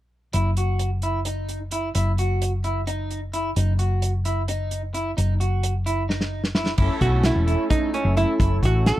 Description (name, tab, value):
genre	progressive instrumental, band music in an uneven meter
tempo	260 BPM (eighths)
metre	7/8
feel	straight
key	unclear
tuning	A4 = 439 Hz
part	electric guitar at the edge of break-up	arpeggios	0.3-9.0 s	D#4 to F#4	-28 LUFS	right 1 dB	wide subtle chorus
part	hollow-body short-scale fingered electric bass	bass	0.3-9.0 s	E1 to B1	-22 LUFS	equal	none
part	warm soul drum kit	drums	0.3-9.0 s	crash cymbal, hi-hat, kick drum, snare drum	-25 LUFS	equal	none
part	brassy analog pad	accompaniment	6.8-9.0 s	A3 to A4	-29 LUFS	left 3 dB	chorus
part	archtop guitar, miked and amplified	melody	7.0-9.0 s	C#4 to A4	-24 LUFS	right 3 dB	none
room	little or no reverb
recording	dry, close 1970s-style studio recording, faint mains hum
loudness	-20 LUFS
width	side -15 dB against mid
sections	0.3-6.8 A section; 6.8-9.0 B section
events	drum fill 6.1-6.8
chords	0.3 D#m/F#; 6.8 F#m7